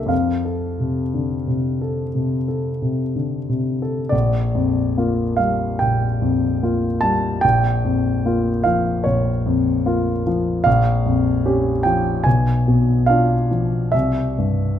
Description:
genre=classical, romantic nocturne for solo piano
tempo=58-76 BPM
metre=4/4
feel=rubato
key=unclear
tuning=A4 = 439 Hz
part: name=warm concert grand piano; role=solo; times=0.0-14.8 s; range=Bb1 to A5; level=-17 LUFS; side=equal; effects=none
room=moderate recital hall reverb, RT60 1.6 s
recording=close, detailed microphones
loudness=-17 LUFS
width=side -10 dB against mid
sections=0.0-4.1 A section; 4.1-14.8 B section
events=none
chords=0.1 F; 4.1 Bb6; 7.4 Bbm; 12.3 Bdim7; 13.9 C

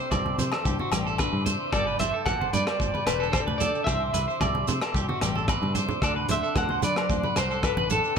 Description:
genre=highlife guitar band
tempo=112 BPM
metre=4/4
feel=straight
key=D mixolydian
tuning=A4 = 440 Hz
part: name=electric guitar at the edge of break-up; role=melody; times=0.0-8.2 s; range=A4 to F#5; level=-29 LUFS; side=right 1 dB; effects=tremolo
part: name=nylon-string guitar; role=accompaniment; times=0.0-8.2 s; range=G2 to A4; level=-35 LUFS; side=left 10 dB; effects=none
part: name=combo organ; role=sustained chords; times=0.0-8.2 s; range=E5 to D6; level=-38 LUFS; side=left 4 dB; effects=none
part: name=electric guitar at the edge of break-up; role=arpeggios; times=0.0-8.2 s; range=F#4 to D5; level=-30 LUFS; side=right 2 dB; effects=phaser, tape echo
part: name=fingered electric bass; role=bass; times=0.1-8.2 s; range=E1 to D3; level=-31 LUFS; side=equal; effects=none
part: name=crunchy breakbeat drum kit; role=drums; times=0.1-8.2 s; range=hi-hat, kick drum, rim click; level=-31 LUFS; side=equal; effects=none
part: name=agogo bells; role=percussion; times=0.1-7.8 s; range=none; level=-35 LUFS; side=left 2 dB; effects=none
part: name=congas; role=percussion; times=0.1-8.0 s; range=none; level=-33 LUFS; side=right 4 dB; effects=none
part: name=shekere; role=percussion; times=0.1-8.2 s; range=none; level=-35 LUFS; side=right 8 dB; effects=none
room=light reverb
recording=none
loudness=-23 LUFS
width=side -6 dB against mid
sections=0.0-8.2 A section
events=drum fill 5.4-6.0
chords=0.0 Cadd9; 1.7 Gsus2; 3.9 Cadd9; 6.0 D7

